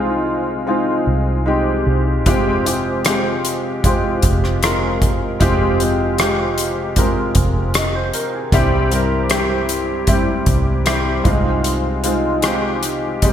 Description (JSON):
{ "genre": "pop ballad", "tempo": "76 BPM", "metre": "4/4", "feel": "straight", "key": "F minor", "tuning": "A4 = 440 Hz", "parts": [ { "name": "warm baby grand piano", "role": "accompaniment", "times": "0.0-13.3 s", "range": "G2 to Eb5", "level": "-18 LUFS", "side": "left 1 dB", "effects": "analog chorus" }, { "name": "vintage muted fingered electric bass", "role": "bass", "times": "0.0-13.3 s", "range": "F1 to C2", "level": "-21 LUFS", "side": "equal", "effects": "none" }, { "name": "soft-mallet drum kit", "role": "drums", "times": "2.3-13.3 s", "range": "hi-hat, kick drum, rim click", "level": "-19 LUFS", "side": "equal", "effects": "none" } ], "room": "moderate lush hall reverb, RT60 2.5 s", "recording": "bright 1980s-style digital production", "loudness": "-15 LUFS", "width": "side -9 dB against mid", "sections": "0.0-13.3 A section", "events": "none", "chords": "0.0 Ab6/C; 2.3 Fmadd9; 8.5 C; 11.3 Ab6/C" }